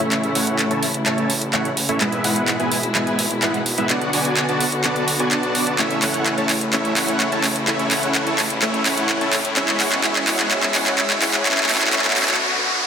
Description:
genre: EDM, festival progressive house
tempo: 127 BPM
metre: 4/4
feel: straight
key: A major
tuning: A4 = 440 Hz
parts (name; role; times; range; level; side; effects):
- dark chamber string section; sustained chords; 0.0-12.9 s; B2 to F#4; -26 LUFS; left 1 dB; none
- dense compressed supersaw; riff; 0.0-12.4 s; G#3 to A5; -21 LUFS; equal; low-pass filter, dub echo
- detuned saw bass; bass; 0.0-12.4 s; G#1 to A2; -31 LUFS; equal; none
- house drum kit; drums; 0.0-12.4 s; handclaps, hi-hat; -20 LUFS; equal; high-pass filter on hats, high-pass filter on snare
- riser and noise sweep; sound effects; 6.7-12.9 s; none; -30 LUFS; equal; none
room: wet recital hall reverb, RT60 1.6 s, digital ambience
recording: dense, heavily limited modern master, high-pass filter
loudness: -17 LUFS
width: side -7 dB against mid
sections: 0.0-12.9 A section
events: build-up 0.0-12.9; drum fill 0.0-12.4; filter sweep on supersaw synth 0.0-12.9; filter sweep 0.0-12.9; noise sweep 11.5-12.9; break 12.4-12.9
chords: 0.0 A; 2.0 E/G#; 3.9 Bm; 5.8 A; 9.6 E/G#; 11.5 Bm

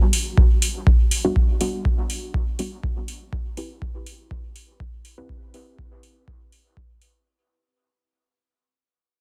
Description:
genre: dub techno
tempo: 122 BPM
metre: 4/4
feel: straight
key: unclear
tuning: A4 = 441 Hz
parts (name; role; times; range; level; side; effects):
- electronic hi-hat; drums; 0.1-7.1 s; none; -29 LUFS; equal; overdrive
- electronic kick drum; drums; 0.4-6.9 s; none; -21 LUFS; equal; overdrive
- deep mellow chord stab; stabs; 1.2-6.5 s; G3 to B4; -31 LUFS; equal; chorus, phaser, sidechain pumping, dub echo
room: digital ambience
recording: dense, heavily limited modern master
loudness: -21 LUFS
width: mono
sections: 0.0-7.3 A section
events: fade-out 0.0-7.3; filter sweep on synth stab 0.0-7.3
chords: 0.0 Gmaj7; 3.3 Cmaj7

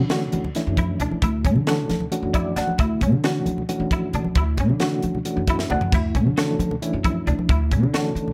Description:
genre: electric jazz fusion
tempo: 268 BPM (eighths)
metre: 7/8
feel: straight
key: D major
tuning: A4 = 440 Hz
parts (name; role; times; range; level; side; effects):
- overdriven reed electric piano; accompaniment; 0.0-8.3 s; E3 to F#5; -28 LUFS; equal; fast tremolo
- semi-hollow electric guitar; stabs; 0.0-8.1 s; C#4 to F#4; -32 LUFS; equal; ensemble chorus, plate reverb
- upright bass; bass; 0.0-8.3 s; D2 to D3; -26 LUFS; equal; none
- crisp fusion drum kit; drums; 0.1-8.3 s; hi-hat, kick drum, snare drum, splash cymbal, toms; -27 LUFS; equal; none
- congas; percussion; 0.3-8.3 s; none; -31 LUFS; equal; none
room: light reverb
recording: none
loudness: -22 LUFS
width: mono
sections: 0.0-8.3 A section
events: reed electric piano fill 2.1-2.8, 5.3-5.9; drum fill 5.6-5.9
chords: 0.0 Dmaj9

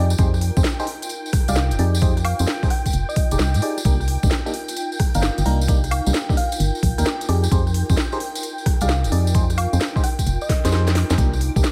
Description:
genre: UK garage, two-step garage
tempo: 131 BPM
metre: 4/4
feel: swing 67% on 16ths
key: unclear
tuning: A4 = 442 Hz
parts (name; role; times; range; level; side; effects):
- soft string machine; sustained chords; 0.0-11.7 s; G5 to D6; -37 LUFS; equal; ensemble chorus, sidechain pumping
- FM electric piano; stabs; 0.0-11.6 s; Bb3 to D5; -31 LUFS; equal; chorus, phaser, delay
- organ-like FM bass; bass; 0.0-11.6 s; F1 to Ab2; -22 LUFS; equal; none
- ethereal airy pad; texture; 0.0-11.7 s; Eb4 to G5; -35 LUFS; equal; ensemble chorus, built-in reverb, sidechain pumping
- garage drum kit; drums; 0.1-11.7 s; hi-hat, rim click, snare drum, woodblock; -29 LUFS; equal; none
- tambourine; percussion; 0.1-11.7 s; none; -35 LUFS; equal; none
- electronic kick drum; drums; 0.2-11.6 s; none; -22 LUFS; equal; overdrive
- thumb-piano-like synth pluck; melody; 1.5-11.0 s; Eb5 to G5; -32 LUFS; equal; chorus
room: little or no reverb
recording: vinyl crackle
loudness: -20 LUFS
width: mono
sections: 0.0-11.7 A section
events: drum fill 10.5-11.2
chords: 0.0 Fm9; 3.9 Cm9; 7.3 Fm9; 11.2 Cm9

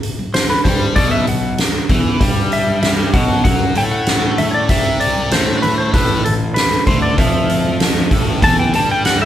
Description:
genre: psychedelic rock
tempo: 96 BPM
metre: 4/4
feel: straight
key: unclear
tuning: A4 = 441 Hz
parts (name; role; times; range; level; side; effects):
- soft-mallet drum kit; drums; 0.0-9.2 s; hi-hat, kick drum, snare drum; -16 LUFS; equal; none
- congas; percussion; 0.2-8.9 s; none; -30 LUFS; right 1 dB; none
- clean lap steel guitar; melody; 0.3-9.3 s; A4 to A5; -18 LUFS; left 1 dB; tape echo
- thick fuzz guitar; riff; 0.6-9.3 s; A2 to A3; -20 LUFS; left 1 dB; distortion, phaser
- fuzz picked electric bass; bass; 0.6-9.3 s; A1 to A2; -22 LUFS; equal; overdrive
- overdriven combo organ; sustained chords; 5.9-9.3 s; A3 to A4; -29 LUFS; right 3 dB; none
room: moderate large studio reverb, RT60 1.1 s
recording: band playing live in one room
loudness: -13 LUFS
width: side -11 dB against mid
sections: 0.0-9.3 A section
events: electric slide guitar solo 0.0-9.3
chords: 0.0 B5; 5.9 A5

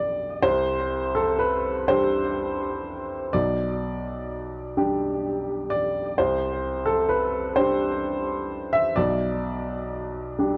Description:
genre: neoclassical minimalist piano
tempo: 42 BPM (dotted quarters)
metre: 6/8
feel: rubato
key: unclear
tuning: A4 = 441 Hz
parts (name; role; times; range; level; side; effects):
- warm upright piano; solo; 0.0-10.6 s; B1 to E5; -25 LUFS; equal; tape echo
room: light reverb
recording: dark, warm production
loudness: -25 LUFS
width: mono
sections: 0.4-10.6 A section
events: none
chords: 0.4 Csus2; 3.3 G/B; 6.2 Csus2; 9.0 G/B

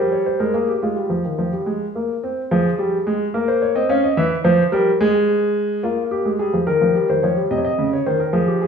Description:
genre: classical, baroque-style two-part invention for grand piano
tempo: 72 BPM (dotted quarters)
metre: 6/8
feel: straight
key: F minor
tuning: A4 = 439 Hz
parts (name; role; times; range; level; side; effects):
- warm baby grand piano; solo; 0.0-8.7 s; C3 to F5; -17 LUFS; equal; none
room: wet recital hall reverb, RT60 1.4 s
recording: small room ambience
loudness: -17 LUFS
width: side -6 dB against mid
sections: 0.0-2.5 A section; 2.5-5.8 B section; 5.8-8.7 A section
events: none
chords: 0.0 C5/G; 0.8 Fm; 3.3 Bbm; 4.2 C7/E; 5.0 N.C.; 5.8 Bb5; 6.7 Eb; 7.5 Cm7

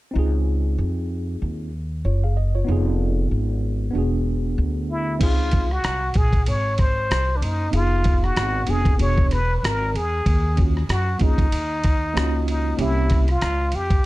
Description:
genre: hip hop, jazz-hop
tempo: 95 BPM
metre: 4/4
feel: swing 58% on 16ths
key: Db major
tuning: A4 = 439 Hz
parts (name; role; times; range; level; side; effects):
- tine electric piano; accompaniment; 0.1-13.3 s; Bb3 to F5; -27 LUFS; right 1 dB; overdrive, fast stereo tremolo
- upright bass; bass; 0.2-14.0 s; E1 to Gb2; -22 LUFS; equal; none
- trumpet with plunger mute; melody; 4.9-14.1 s; D4 to Db5; -25 LUFS; equal; analog delay
- dusty soul sampler-style drum kit; drums; 5.2-14.0 s; crash cymbal, hi-hat, kick drum, ride cymbal, rim click; -22 LUFS; equal; none
room: little or no reverb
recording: dark, warm production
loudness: -19 LUFS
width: side -18 dB against mid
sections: 0.2-5.2 A section; 5.2-14.1 B section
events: none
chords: 0.2 Dbmaj9; 2.7 Fm7b5; 3.9 E9; 5.2 Dbmaj9; 7.7 Fm7b5; 9.0 E9; 10.3 Ebm7; 12.8 C7b9

